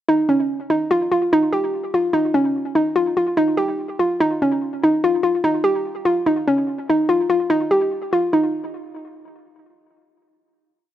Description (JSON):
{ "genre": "progressive instrumental, progressive", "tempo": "146 BPM", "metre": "5/4", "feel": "straight", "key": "unclear", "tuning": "A4 = 440 Hz", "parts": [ { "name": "hollow square pluck", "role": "solo", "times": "0.1-8.5 s", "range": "Db4 to G4", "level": "-17 LUFS", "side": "equal", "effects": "chorus, tape echo" } ], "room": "little or no reverb", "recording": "dry, close 1970s-style studio recording", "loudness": "-17 LUFS", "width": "side -12 dB against mid", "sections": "0.1-8.3 A section; 8.3-10.4 final note", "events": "none", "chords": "none" }